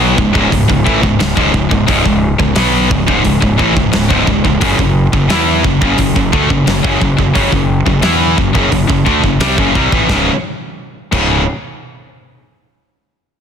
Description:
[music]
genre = heavy metal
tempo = 88 BPM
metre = 4/4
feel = straight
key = C# minor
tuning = A4 = 440 Hz
[part]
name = heavy high-gain guitar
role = riff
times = 0.0-11.4 s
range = C#2 to E4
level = -16 LUFS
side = right 12 dB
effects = distortion
[part]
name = high-gain distorted guitar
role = riff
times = 0.0-11.4 s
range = C#2 to E4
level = -15 LUFS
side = left 9 dB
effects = distortion
[part]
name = fuzz fingered electric bass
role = bass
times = 0.0-11.4 s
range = C#1 to E2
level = -17 LUFS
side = equal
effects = overdrive
[part]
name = big rock drum kit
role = drums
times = 0.2-11.3 s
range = crash cymbal, hi-hat, kick drum, snare drum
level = -16 LUFS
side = equal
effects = none
[sound]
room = studio ambience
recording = dense, heavily limited modern master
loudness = -10 LUFS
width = side -7 dB against mid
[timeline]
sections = 0.0-10.1 A section; 10.1-12.8 B section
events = none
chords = 0.0 C#m; 4.6 F#5; 10.1 C#5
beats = 0.50 1.18 | 1.87 2.55 3.23 3.92 | 4.60 5.29 5.97 6.66 | 7.34 8.03 8.72 9.40 | 10.09 10.78

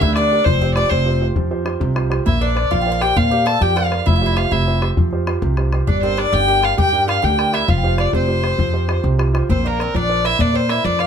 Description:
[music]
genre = celtic folk, Celtic slide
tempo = 133 BPM (dotted quarters)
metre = 12/8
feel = straight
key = unclear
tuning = A4 = 440 Hz
[part]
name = rich fiddle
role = melody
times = 0.0-11.1 s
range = Bb4 to A5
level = -20 LUFS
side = equal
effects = none
[part]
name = Irish bouzouki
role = second line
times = 0.0-11.1 s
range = Bb3 to A4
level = -25 LUFS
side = right 1 dB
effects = none
[part]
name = mellow hollow wooden flute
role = second line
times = 0.0-11.1 s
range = Bb4 to G5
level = -24 LUFS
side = left 8 dB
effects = none
[part]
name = warm grand piano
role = accompaniment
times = 0.0-11.1 s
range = C3 to D5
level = -22 LUFS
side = right 3 dB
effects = none
[part]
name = upright bass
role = bass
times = 0.0-11.1 s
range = F1 to Bb2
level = -20 LUFS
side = right 1 dB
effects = none
[part]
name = bodhran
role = percussion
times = 0.0-11.1 s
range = none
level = -22 LUFS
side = left 2 dB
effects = none
[sound]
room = light reverb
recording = close, detailed microphones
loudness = -15 LUFS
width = side -7 dB against mid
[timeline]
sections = 0.0-11.1 A section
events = none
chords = 0.5 Fsus2; 2.3 Bbadd9; 4.1 Fsus2; 5.9 Gm; 7.7 Fsus2; 9.5 Bbadd9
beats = 0.01 | 0.46 0.91 1.36 1.81 | 2.27 2.72 3.17 3.62 | 4.07 4.52 4.97 5.42 | 5.88 6.33 6.78 7.23 | 7.68 8.14 8.59 9.04 | 9.49 9.95 10.40 10.85

